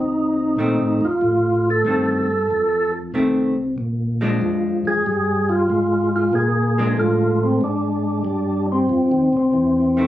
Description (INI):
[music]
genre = soul jazz organ trio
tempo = 94 BPM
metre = 4/4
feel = swing 69% on 8ths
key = unclear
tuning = A4 = 439 Hz
[part]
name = percussive tonewheel organ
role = melody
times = 0.0-10.1 s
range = C4 to A4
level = -19 LUFS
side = equal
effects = slow rotary speaker, overdrive, chorus vibrato
[part]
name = tonewheel organ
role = bass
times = 0.0-10.1 s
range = F1 to Bb2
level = -22 LUFS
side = equal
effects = chorus vibrato
[part]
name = vintage hollow-body jazz guitar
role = accompaniment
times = 0.6-10.1 s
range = Eb3 to D4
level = -22 LUFS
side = equal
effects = none
[sound]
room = light reverb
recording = recorded on a phone in the room, club ambience, compression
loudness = -17 LUFS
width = side -13 dB against mid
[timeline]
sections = 0.0-10.1 A section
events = none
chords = 0.0 F7; 3.8 Bb7; 8.9 F7(no3)